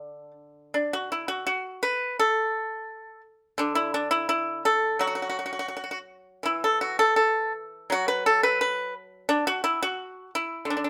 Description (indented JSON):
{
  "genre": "chinese traditional, Chinese solo plucked strings",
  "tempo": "84 BPM",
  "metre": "2/4",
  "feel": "uneven beats, rubato",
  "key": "D gong mode",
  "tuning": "A4 = 440 Hz",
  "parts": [
    { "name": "pipa", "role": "solo", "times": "0.0-10.9 s", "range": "D3 to B4", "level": "-26 LUFS", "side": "equal", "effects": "none" }
  ],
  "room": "light reverb",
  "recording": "band playing live in one room",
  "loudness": "-26 LUFS",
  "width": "mono",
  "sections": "0.7-10.9 A section",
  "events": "none",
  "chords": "none",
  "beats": "| 0.73 1.47 | 2.19 2.89 | 3.59 4.29 | 5.01 5.73 | 6.46 7.20 | 7.92 8.61 | 9.30 9.98 | 10.68"
}